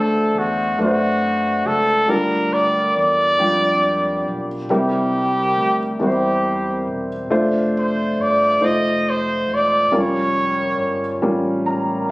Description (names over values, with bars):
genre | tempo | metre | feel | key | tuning
slow gospel | 46 BPM (dotted quarters) | 6/8 | straight | F major | A4 = 436 Hz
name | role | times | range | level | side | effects
warm trumpet | melody | 0.0-11.2 s | F#4 to Eb5 | -18 LUFS | equal | none
warm upright piano | accompaniment | 0.0-12.1 s | C3 to Bb5 | -20 LUFS | equal | none
fingered electric bass | bass | 0.0-12.1 s | E1 to F#2 | -31 LUFS | equal | none
room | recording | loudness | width
light reverb | recorded on a phone in the room, studio reverb | -16 LUFS | side -21 dB against mid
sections
0.0-12.1 A section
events
upright piano fill 11.2-12.1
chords
0.0 D7; 2.1 Gm7/D; 4.7 C7; 7.3 F6; 8.6 F7; 9.9 Bbm6/F